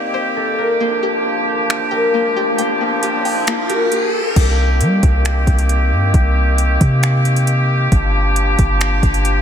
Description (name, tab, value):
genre	hip hop, atmospheric cloud-rap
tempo	135 BPM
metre	4/4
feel	half-time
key	unclear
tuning	A4 = 439 Hz
part	concert harp	melody	0.0-5.8 s	A4 to D5	-21 LUFS	left 2 dB	low-pass filter, analog delay
part	warm woodwind section	sustained chords	0.0-9.4 s	Eb3 to G4	-19 LUFS	equal	sidechain pumping
part	string-like resonator pluck	arpeggios	0.0-4.4 s	Bb3 to G5	-28 LUFS	left 2 dB	none
part	downlifter and riser	sound effects	0.1-4.4 s	none	-26 LUFS	left 2 dB	none
part	smooth R&B drum kit	drums	1.7-9.4 s	crash cymbal, finger snaps, hi-hat, kick drum	-19 LUFS	equal	overdrive
part	soft 808-style bass	bass	4.4-9.4 s	G1 to G3	-15 LUFS	equal	none
room	moderate huge ambient reverb, RT60 9.1 s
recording	dreamy mix soaked in reverb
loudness	-13 LUFS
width	side -8 dB against mid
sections	0.0-4.4 A section; 4.4-9.4 B section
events	riser 1.7-4.4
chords	0.0 Cm7; 0.8 Gm7; 4.4 Cm7; 7.9 Gm7